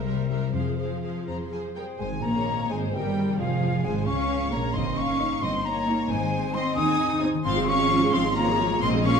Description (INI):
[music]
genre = classical, dramatic, fast romantic movement for symphony orchestra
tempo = 81-90 BPM (dotted quarters)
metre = 6/8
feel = rubato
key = Ab major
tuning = A4 = 440 Hz
[part]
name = warm symphonic violin section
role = melody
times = 0.0-9.2 s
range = E5 to Eb6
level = -35 LUFS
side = left 3 dB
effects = none
[part]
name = rich symphonic violin section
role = second line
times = 0.0-9.2 s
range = Ab4 to Ab5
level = -33 LUFS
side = left 2 dB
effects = none
[part]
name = warm symphonic viola section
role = accompaniment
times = 0.0-9.2 s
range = F3 to Bb4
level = -31 LUFS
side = right 2 dB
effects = none
[part]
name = concert harp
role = arpeggios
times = 0.0-9.2 s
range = G2 to Bb5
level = -32 LUFS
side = left 9 dB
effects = none
[part]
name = rich symphonic cello section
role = bass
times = 0.0-9.2 s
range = F3 to Eb4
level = -30 LUFS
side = right 3 dB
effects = none
[part]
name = rich symphonic double bass section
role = bass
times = 0.0-9.2 s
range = F1 to F2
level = -30 LUFS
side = right 5 dB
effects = none
[part]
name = hollow concert flute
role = second line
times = 1.8-9.2 s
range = F5 to Eb6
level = -28 LUFS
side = left 3 dB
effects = none
[part]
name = mellow French horn section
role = sustained chords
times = 2.0-9.2 s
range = F3 to F4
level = -33 LUFS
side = left 4 dB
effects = none
[sound]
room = wet recital hall reverb, RT60 1.6 s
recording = dark, warm production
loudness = -23 LUFS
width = side -6 dB against mid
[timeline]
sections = 0.0-2.0 A section; 2.0-9.2 B section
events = none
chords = 0.0 C7; 0.5 Fm; 2.0 Ab; 3.4 Db/F; 4.8 Eb7/G; 6.1 Ab; 7.5 Fm/Ab